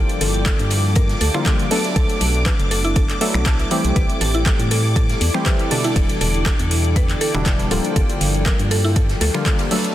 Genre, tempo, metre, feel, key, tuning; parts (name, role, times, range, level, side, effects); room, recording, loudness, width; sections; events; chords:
deep house; 120 BPM; 4/4; swing 54% on 16ths; A4 = 440 Hz
warm analog keys; stabs; 0.0-9.9 s; B2 to A4; -23 LUFS; left 1 dB; chorus, sidechain pumping, digital delay
organ-like FM bass; bass; 0.0-9.3 s; D1 to A2; -20 LUFS; equal; sidechain pumping
granular cloud pad; texture; 0.0-9.9 s; D4 to A5; -28 LUFS; left 1 dB; built-in reverb, sidechain pumping
soft string machine; texture; 0.0-9.9 s; D6; -30 LUFS; left 1 dB; phaser, ensemble chorus, sidechain pumping
deep house drum kit; drums; 0.1-9.9 s; finger snaps, handclaps, hi-hat; -25 LUFS; equal; overdrive, studio ambience
mallet-like synth pluck; arpeggios; 0.2-9.5 s; E4 to A5; -28 LUFS; right 2 dB; chorus, sidechain pumping, dub echo
open jazz drum kit; drums; 0.2-9.8 s; hi-hat, ride cymbal, snare drum; -32 LUFS; left 2 dB; high-pass filter on hats, studio ambience, high-pass filter on cymbals, high-pass filter on snare, high-pass filter on room
electronic kick drum; drums; 0.5-9.6 s; -18 LUFS; equal; overdrive, studio ambience
light reverb; dense, heavily limited modern master; -16 LUFS; side -13 dB against mid
0.0-9.9 A section
0.0 Gm7; 1.7 Bm7; 4.0 Am7; 5.7 Em7; 8.0 Gm7